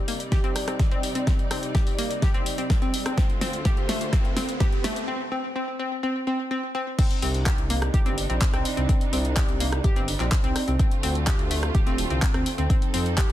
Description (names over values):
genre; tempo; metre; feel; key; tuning
progressive house; 126 BPM; 4/4; straight; C dorian; A4 = 440 Hz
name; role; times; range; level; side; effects
warm studio string section; sustained chords; 0.0-13.3 s; D2 to D5; -33 LUFS; right 2 dB; sidechain pumping
riser; sound effects; 1.5-5.1 s; none; -40 LUFS; equal; none
analog pluck; arpeggios; 0.1-13.2 s; A3 to G4; -29 LUFS; left 1 dB; chorus, sidechain pumping, ping-pong delay
deep house drum kit; drums; 0.1-13.3 s; crash cymbal, handclaps, hi-hat, rim click, snare drum; -30 LUFS; equal; soft clipping on snare
electronic kick drum; drums; 0.3-13.3 s; none; -23 LUFS; equal; none
dark detuned saw bass; bass; 7.2-13.3 s; D1 to F2; -26 LUFS; equal; tube saturation, sidechain pumping
room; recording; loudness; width
digital ambience; dense, heavily limited modern master; -22 LUFS; side -13 dB against mid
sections
0.0-7.0 A section; 7.0-13.3 B section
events
build-up 0.0-7.0; drum fill 0.0-5.1; break 5.1-7.0; drop 7.0-13.3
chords
0.0 Cmadd9; 3.2 Dm7; 5.1 N.C.; 7.0 Cmadd9; 10.8 Dm7; 12.7 F7